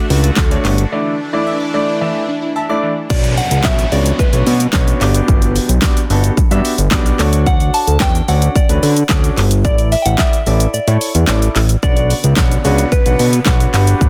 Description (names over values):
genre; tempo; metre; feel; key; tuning
dance-pop; 110 BPM; 4/4; straight; B minor; A4 = 439 Hz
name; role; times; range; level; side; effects
warm concert grand piano; accompaniment; 0.0-14.1 s; A3 to A5; -22 LUFS; equal; sidechain pumping
supersaw pad; sustained chords; 0.0-3.1, 11.8-14.1 s; C#3 to F#5; -27 LUFS; equal; phaser, sidechain pumping
glassy wavetable pluck; arpeggios; 0.0-2.9 s; E3 to D6; -26 LUFS; equal; chorus, sidechain pumping, tape echo
fat analog bass; bass; 0.1-14.1 s; G1 to D3; -16 LUFS; equal; sidechain pumping
pop drum kit; drums; 0.1-14.1 s; crash cymbal, handclaps, hi-hat, kick drum, shaker, snare drum; -17 LUFS; equal; none
soft synth bell; melody; 3.1-13.7 s; B4 to A5; -23 LUFS; equal; chorus, tape echo
downlifter; sound effects; 3.1-7.5 s; none; -29 LUFS; equal; none
room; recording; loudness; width
little or no reverb; dense, heavily limited modern master; -14 LUFS; mono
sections
0.0-3.1 A section; 3.1-14.1 B section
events
break 0.9-3.1; grand piano fill 1.5-3.1; kick muted 10.7-11.8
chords
0.0 Dmaj7; 0.9 Asus4; 3.1 Bmadd9; 5.0 Gmaj7; 7.2 Dmaj7; 9.6 Asus4; 11.8 Bmadd9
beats
0.38 | 0.92 1.47 2.01 2.56 | 3.10 3.65 4.19 4.74 | 5.28 5.83 6.38 6.92 | 7.47 8.01 8.56 9.10 | 9.65 10.19 10.74 11.28 | 11.83 12.38 12.92 13.47 | 14.01